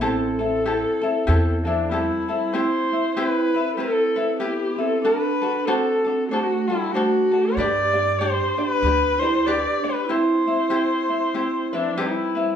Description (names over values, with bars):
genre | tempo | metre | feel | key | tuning
Hawaiian | 95 BPM | 4/4 | swing 60% on 8ths | C major | A4 = 440 Hz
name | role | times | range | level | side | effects
dark viola | melody | 0.0-12.6 s | D4 to D5 | -22 LUFS | left 1 dB | none
vibraphone with soft mallets | second line | 0.0-12.6 s | F3 to G4 | -26 LUFS | right 5 dB | none
ukulele | accompaniment | 0.0-12.6 s | C4 to D5 | -25 LUFS | left 2 dB | none
upright bass | bass | 0.0-2.1, 7.6-9.6 s | A1 to G2 | -25 LUFS | equal | none
room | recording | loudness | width
wet large studio reverb, RT60 0.9 s | band playing live in one room | -19 LUFS | side -8 dB against mid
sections
0.0-2.5 A section; 2.5-12.6 B section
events
none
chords
0.0 Am7; 2.5 Cmaj7; 5.0 D7; 7.6 G; 10.1 Cmaj7